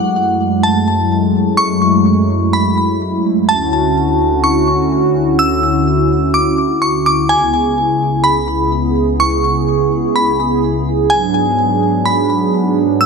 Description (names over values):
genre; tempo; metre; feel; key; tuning
hip hop; 126 BPM; 4/4; half-time; F# minor; A4 = 440 Hz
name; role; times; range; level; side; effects
glassy synth bell; melody; 0.0-13.1 s; F#5 to E6; -16 LUFS; left 1 dB; chorus, ping-pong delay
hollow soft pad; sustained chords; 0.0-13.1 s; C#2 to G#4; -13 LUFS; right 1 dB; chorus
room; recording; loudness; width
moderate lush hall reverb, RT60 2.8 s; none; -12 LUFS; side -5 dB against mid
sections
0.0-13.1 A section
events
none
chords
0.0 F#m7; 3.5 Dmaj7; 7.3 C#m7; 11.1 G#m7b5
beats
0.15 0.63 1.11 | 1.58 2.06 2.53 3.01 | 3.49 3.96 4.44 4.92 | 5.39 5.87 6.34 6.82 | 7.30 7.77 8.25 8.72 | 9.20 9.68 10.15 10.63 | 11.11 11.58 12.06 12.53 | 13.01